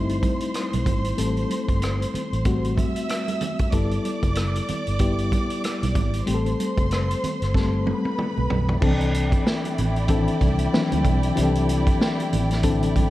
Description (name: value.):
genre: lush 1970s-style soul.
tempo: 94 BPM.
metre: 4/4.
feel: swing 58% on 16ths.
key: unclear.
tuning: A4 = 438 Hz.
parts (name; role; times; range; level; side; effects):
warm symphonic violin section; second line; 0.0-13.1 s; E4 to E6; -30 LUFS; right 1 dB; none.
mellow reed electric piano; accompaniment; 0.0-13.1 s; D3 to A4; -25 LUFS; left 3 dB; fast tremolo.
vintage muted fingered electric bass; bass; 0.0-13.1 s; F#1 to D2; -24 LUFS; equal; none.
vintage drum kit; drums; 0.1-13.1 s; crash cymbal, hi-hat, kick drum, rim click, snare drum, toms; -25 LUFS; equal; none.
congas; percussion; 0.2-13.1 s; none; -32 LUFS; right 6 dB; none.
room: little or no reverb.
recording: dark, warm production.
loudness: -20 LUFS.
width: side -15 dB against mid.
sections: 0.0-8.8 A section; 8.8-13.1 B section.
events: drum fill 7.5-8.8.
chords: 0.0 Am7; 3.7 G69; 6.3 Am9; 8.8 C69.